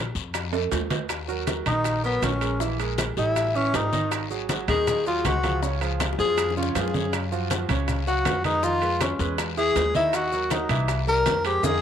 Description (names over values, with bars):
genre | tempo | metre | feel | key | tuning
Afro-Cuban jazz | 159 BPM | 4/4 | straight | Eb minor | A4 = 440 Hz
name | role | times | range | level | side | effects
upright bass | bass | 0.0-11.8 s | Ab1 to Gb2 | -29 LUFS | left 2 dB | none
bongos | percussion | 0.2-11.7 s | none | -36 LUFS | left 14 dB | none
guiro | percussion | 0.2-11.7 s | none | -37 LUFS | left 16 dB | none
maracas | percussion | 0.2-11.7 s | none | -39 LUFS | left 18 dB | none
congas | percussion | 0.3-11.7 s | none | -32 LUFS | left 2 dB | none
timbales | percussion | 0.3-11.7 s | none | -31 LUFS | right 11 dB | none
warm grand piano | accompaniment | 1.3-11.8 s | Db3 to F5 | -30 LUFS | right 10 dB | none
breathy tenor saxophone | melody | 1.7-11.8 s | Cb4 to Bb4 | -24 LUFS | left 2 dB | none
room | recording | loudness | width
moderate spring reverb, RT60 1.3 s | 1960s-style stereo with parts hard left and right | -22 LUFS | side -9 dB against mid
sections
0.0-1.1 A section; 1.1-11.8 A section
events
drum fill 0.5-1.1, 6.0-7.1, 11.6; tenor saxophone solo 1.1-11.8; band accent 11.6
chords
0.0 N.C.; 1.1 Ebm7; 2.6 Gm69; 3.4 A5; 4.1 Ab5; 5.6 Db; 7.1 Gbsus2; 8.6 Fm7b5; 9.4 E; 10.1 Ebm; 10.9 C7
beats
0.34 0.72 | 1.10 1.48 1.85 2.23 | 2.61 2.98 3.36 3.74 | 4.12 4.49 4.87 5.25 | 5.62 6.00 6.38 6.75 | 7.13 7.50 7.88 8.26 | 8.63 9.01 9.38 9.76 | 10.13 10.51 10.89 11.26 | 11.64